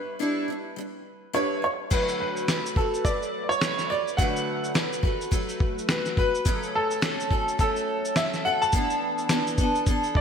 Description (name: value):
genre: acoustic pop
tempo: 106 BPM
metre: 4/4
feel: swing 60% on 16ths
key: unclear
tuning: A4 = 438 Hz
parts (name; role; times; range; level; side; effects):
- warm upright piano; melody; 0.0-10.2 s; A4 to A5; -28 LUFS; right 1 dB; lush chorus, digital delay
- picked acoustic archtop guitar; accompaniment; 0.0-10.2 s; F#2 to B4; -28 LUFS; equal; double-tracked left and right
- dusty soul sampler-style drum kit; drums; 1.9-10.2 s; crash cymbal, kick drum, shaker, snare drum; -26 LUFS; equal; none
room: moderate lush hall reverb, RT60 1.9 s, digital ambience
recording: bright 1980s-style digital production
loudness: -23 LUFS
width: side -7 dB against mid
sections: 0.0-1.9 A section; 1.9-10.2 B section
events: none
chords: 0.0 G6; 1.9 D6; 6.5 F#m; 8.7 E7sus4